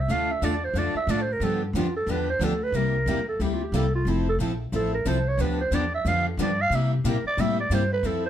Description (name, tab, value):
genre	acoustic string swing (jazz manouche)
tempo	181 BPM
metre	4/4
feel	swing 60% on 8ths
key	unclear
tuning	A4 = 440 Hz
part	growling clarinet	melody	0.0-8.3 s	D4 to F5	-27 LUFS	right 2 dB	none
part	upright bass	bass	0.0-8.3 s	F1 to C3	-27 LUFS	left 1 dB	none
part	picked steel-string acoustic guitar	accompaniment	0.1-8.2 s	C3 to A4	-30 LUFS	left 6 dB	none
part	picked steel-string acoustic guitar	accompaniment	0.1-8.2 s	C3 to A4	-31 LUFS	right 6 dB	none
room	light reverb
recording	dark, warm production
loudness	-22 LUFS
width	side -10 dB against mid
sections	0.0-8.3 A section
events	clarinet solo 0.0-8.3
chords	0.1 Dm; 1.4 G7; 2.7 C7; 4.1 Fmaj7; 5.4 G7; 6.7 C7